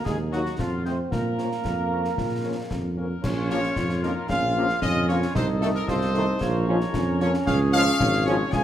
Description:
military-style march for wind band; 113 BPM; 2/4; straight; Bb minor; A4 = 440 Hz
clear euphonium; second line; 0.0-8.6 s; F3 to F4; -30 LUFS; right 3 dB
warm woodwind section; second line; 0.0-8.6 s; F4 to F5; -33 LUFS; left 2 dB
mellow tuba; bass; 0.1-8.6 s; Ab1 to Bb2; -26 LUFS; right 1 dB
concert snare drum, concert bass drum and clash cymbals; drums; 0.1-8.6 s; -32 LUFS; left 2 dB
clear trumpet section; melody; 0.3-8.6 s; A4 to Ab5; -27 LUFS; left 1 dB
warm French horn section; accompaniment; 0.3-8.4 s; F3 to F4; -34 LUFS; left 5 dB
warm trombone section; sustained chords; 3.5-8.4 s; Eb3 to Db4; -31 LUFS; equal
wet scoring stage reverb, RT60 1.6 s; -22 LUFS; side -11 dB against mid
0.0-3.2 A section; 3.2-8.6 B section
0.1 Ebm; 0.6 F; 1.1 Bbm; 5.4 Adim/C; 6.4 Bbm; 7.5 Db
| 0.06 0.59 | 1.12 1.65 | 2.18 2.71 | 3.24 3.77 | 4.30 4.83 | 5.36 5.88 | 6.41 6.94 | 7.47 8.00 | 8.53

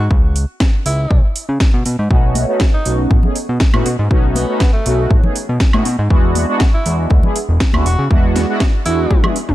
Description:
nu-disco, nu disco; 120 BPM; 4/4; straight; A4 = 440 Hz
clear tenor saxophone; melody; 0.0-9.2 s; A3 to F#4; -26 LUFS; equal; tape echo
fat analog bass; bass; 0.0-9.5 s; E1 to C#3; -16 LUFS; equal
electronic kick drum; drums; 0.1-9.2 s; -13 LUFS; equal
house drum kit; drums; 0.4-9.5 s; hi-hat, snare drum, toms, woodblock; -22 LUFS; equal
mellow synth brass; accompaniment; 2.1-9.4 s; G#3 to G#4; -20 LUFS; right 1 dB; chorus, phaser, vintage 12-bit sampler grit, sidechain pumping, tape echo
congas; percussion; 2.4-9.3 s; -25 LUFS; left 4 dB
digital ambience; -12 LUFS; side -15 dB against mid
0.0-9.5 A section
drum fill 9.1-9.5
0.0 C#5; 1.9 B9; 6.1 E7
| 0.11 0.61 1.11 1.61 | 2.11 2.61 3.11 3.61 | 4.11 4.61 5.11 5.61 | 6.11 6.61 7.11 7.61 | 8.11 8.61 9.11

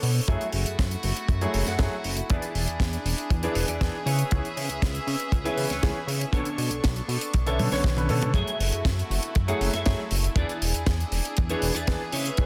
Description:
nu-disco, nu disco; 119 BPM; 4/4; straight; F# minor; A4 = 440 Hz
rich chamber string section; sustained chords; 0.0-12.5 s; A3 to C#6; -37 LUFS; equal; sidechain pumping
chorused synth bass; bass; 0.0-12.5 s; E1 to C#3; -30 LUFS; equal
tight funk drum kit; drums; 0.0-12.5 s; hi-hat, rim click, snare drum, toms; -34 LUFS; equal
clean electric guitar; riff; 0.2-12.5 s; D4 to F#5; -38 LUFS; equal; ensemble chorus, low-pass filter, dub echo
bright grand piano; accompaniment; 0.3-12.5 s; D3 to C#5; -34 LUFS; equal; sidechain pumping, dub echo
kick drum; drums; 0.3-12.5 s; -26 LUFS; equal
light reverb, small room ambience; dense, heavily limited modern master; -26 LUFS; mono
0.0-12.5 A section
filter sweep on clean electric guitar 0.0-12.5; drum fill 7.6-8.3
0.3 F#m9; 2.3 E7; 4.1 C#m7; 6.3 Bm9; 8.3 F#m9; 10.4 E7
| 0.28 0.79 1.29 1.79 | 2.30 2.80 3.31 3.81 | 4.32 4.82 5.32 5.83 | 6.33 6.84 7.34 7.84 | 8.35 8.85 9.36 9.86 | 10.37 10.87 11.38 11.88 | 12.38

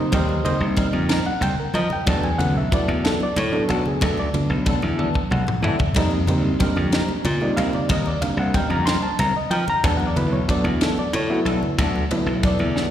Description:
electric jazz fusion; 62 BPM (dotted quarters); 6/8; straight; A4 = 438 Hz
overdriven reed electric piano; accompaniment; 0.0-12.9 s; F#3 to C6; -24 LUFS; right 2 dB; slapback echo
clean electric guitar; stabs; 0.1-12.9 s; F#3 to Bb4; -28 LUFS; left 2 dB; analog chorus, tape echo, slapback echo
glassy slap bass; bass; 0.1-12.9 s; B1 to F3; -22 LUFS; equal
crisp fusion drum kit; drums; 0.1-12.9 s; kick drum, ride cymbal, snare drum, toms; -25 LUFS; equal
congas; percussion; 0.1-12.8 s; -28 LUFS; left 1 dB; slapback echo
small room ambience; live gig heard through the venue's PA, recital hall reverb; -18 LUFS; side -10 dB against mid
0.0-12.9 A section
drum fill 5.0-6.0; reed electric piano fill 5.0-6.0
0.0 F9sus4; 2.1 E9sus4; 6.0 F9sus4; 9.8 E9sus4
| 0.13 1.10 | 2.07 3.04 | 4.01 4.98 | 5.96 6.93 | 7.90 8.87 | 9.84 10.81 | 11.79 12.76

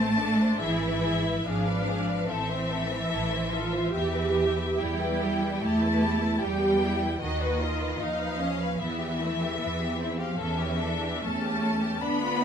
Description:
classical, slow romantic movement for string orchestra; 74 BPM; 4/4; uneven beats, rubato; A minor; A4 = 440 Hz
rich studio violin section; melody; 0.0-12.4 s; D4 to D#5; -35 LUFS; left 4 dB
rich studio violin section; second line; 0.0-12.4 s; D#5 to B5; -32 LUFS; left 3 dB
rich studio viola section; accompaniment; 0.0-12.4 s; A3 to G4; -31 LUFS; right 2 dB
clear studio double bass section; bass; 0.0-12.4 s; G#1 to E2; -33 LUFS; right 2 dB
rich studio cello section; bass; 0.0-12.4 s; D#3 to B3; -29 LUFS; right 1 dB
light reverb; minimal, uncompressed stereo recording; -25 LUFS; side -8 dB against mid
0.0-12.4 A section
0.0 Am; 0.6 E/G#; 2.3 Am; 3.9 Em; 7.2 B/D#; 8.8 Em; 10.4 A7/E
| 0.62 1.46 2.29 3.11 | 3.93 4.78 5.62 6.41 | 7.21 8.01 8.80 9.60 | 10.38 11.23 12.02

